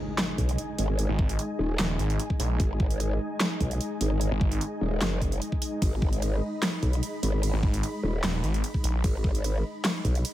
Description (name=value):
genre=heavy wobble dubstep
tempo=149 BPM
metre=4/4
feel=half-time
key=G# minor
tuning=A4 = 440 Hz
part: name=supersaw pad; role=sustained chords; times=0.0-10.3 s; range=G#3 to B5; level=-34 LUFS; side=equal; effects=sidechain pumping, low-pass filter
part: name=impact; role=sound effects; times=0.0-1.0 s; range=none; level=-40 LUFS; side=right 1 dB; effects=none
part: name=dubstep drum kit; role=drums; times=0.2-10.3 s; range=handclaps, hi-hat, ride cymbal, snare drum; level=-31 LUFS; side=equal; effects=overdrive
part: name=growl bass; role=bass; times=0.4-10.2 s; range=D#1 to B1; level=-27 LUFS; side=equal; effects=chorus, overdrive
part: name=electronic kick drum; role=drums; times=0.4-10.1 s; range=none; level=-27 LUFS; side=equal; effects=overdrive
part: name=snarling distorted saw bass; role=bass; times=1.1-4.6, 7.5-9.0 s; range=D#1 to A#1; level=-27 LUFS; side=equal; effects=distortion, overdrive
room=little or no reverb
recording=none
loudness=-25 LUFS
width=side -14 dB against mid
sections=0.0-10.3 A section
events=impact 0.0-1.0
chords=0.0 G#5